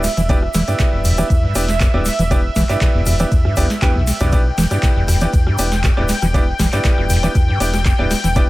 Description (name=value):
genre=acid house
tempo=119 BPM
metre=4/4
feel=straight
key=E minor pentatonic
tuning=A4 = 441 Hz
part: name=warm analog pad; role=sustained chords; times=0.0-8.5 s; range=E5 to G5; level=-24 LUFS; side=equal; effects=chorus, tremolo, sidechain pumping
part: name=bright baby grand piano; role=stabs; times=0.0-8.4 s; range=B3 to G5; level=-23 LUFS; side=right 1 dB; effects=dub echo
part: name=round analog bass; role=bass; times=0.0-8.5 s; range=D1 to E2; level=-20 LUFS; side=equal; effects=tube saturation, sidechain pumping
part: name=booming analog drum machine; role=drums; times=0.0-8.5 s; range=handclaps, hi-hat, ride cymbal, rim click, snare drum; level=-24 LUFS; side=equal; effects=none
part: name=egg shaker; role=percussion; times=0.0-8.5 s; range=none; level=-30 LUFS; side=left 2 dB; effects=none
part: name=overdriven acid bass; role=riff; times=0.2-8.4 s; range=E1 to E3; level=-20 LUFS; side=equal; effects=lush chorus, sidechain pumping
part: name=electronic kick drum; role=drums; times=0.3-8.5 s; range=none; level=-16 LUFS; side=equal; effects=none
room=little or no reverb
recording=none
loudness=-14 LUFS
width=side -18 dB against mid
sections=0.0-8.5 A section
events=none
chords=0.0 Em7